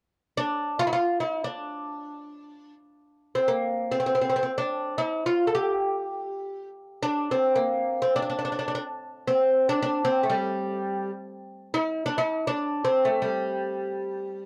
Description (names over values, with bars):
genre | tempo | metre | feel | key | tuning
Arabic maqam ensemble | free time | none | none | D maqam bayati | A4 = 440 Hz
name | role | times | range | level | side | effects
oud | solo | 0.4-14.5 s | G3 to A4 | -27 LUFS | equal | none
room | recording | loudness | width
little or no reverb | dry, gritty hardware recording | -27 LUFS | mono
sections
0.1-14.5 A section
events
none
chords
none